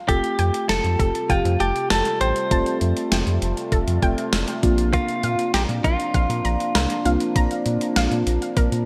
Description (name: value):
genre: synth-pop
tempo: 99 BPM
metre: 4/4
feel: straight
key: unclear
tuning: A4 = 444 Hz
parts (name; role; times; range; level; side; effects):
- muted felt-like synth keys; accompaniment; 0.0-8.9 s; A3 to A4; -29 LUFS; equal; chorus
- direct-recorded clean electric guitar; melody; 0.1-8.9 s; F4 to C5; -27 LUFS; equal; tape echo
- sweeping resonant pad; sustained chords; 1.2-8.9 s; C3 to A4; -32 LUFS; equal; chorus, phaser
- analog pluck; arpeggios; 0.1-8.7 s; A4 to Bb5; -33 LUFS; equal; chorus, tape echo
- round analog bass; bass; 0.1-8.8 s; F1 to Bb2; -25 LUFS; equal; none
- gated 80s digital drum machine; drums; 0.1-8.9 s; hi-hat, kick drum, snare drum; -26 LUFS; equal; gated reverb, gated reverb snare
room: light reverb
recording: none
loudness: -21 LUFS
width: mono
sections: 0.0-8.9 A section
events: synth keys fill 8.6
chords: 0.1 Fadd9; 4.6 Bbadd9